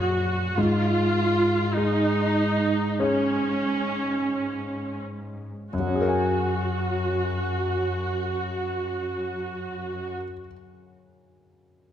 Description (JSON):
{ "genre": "cinematic", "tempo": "41-52 BPM", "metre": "4/4", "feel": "rubato", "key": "F# major", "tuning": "A4 = 438 Hz", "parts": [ { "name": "clear concert grand piano", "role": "accompaniment", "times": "0.0-11.9 s", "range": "A#1 to G#5", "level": "-28 LUFS", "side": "left 1 dB", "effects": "none" }, { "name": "rich studio viola section", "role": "accompaniment", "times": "0.0-10.2 s", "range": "C#4 to F#4", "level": "-26 LUFS", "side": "right 1 dB", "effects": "none" }, { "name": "rich studio cello section", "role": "bass", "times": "0.0-10.1 s", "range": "F#2 to G#2", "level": "-30 LUFS", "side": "left 1 dB", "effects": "none" } ], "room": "moderate scoring stage reverb, RT60 1.8 s", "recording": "none", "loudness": "-23 LUFS", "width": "side -10 dB against mid", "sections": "0.0-5.7 A section; 5.7-11.3 B section", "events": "slowing down 0.0-5.7", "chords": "0.0 F#/A#; 0.6 C#/G#; 5.7 F#add9", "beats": "| 0.57 1.76 2.99 4.29 | 5.72 7.10 8.48 9.88" }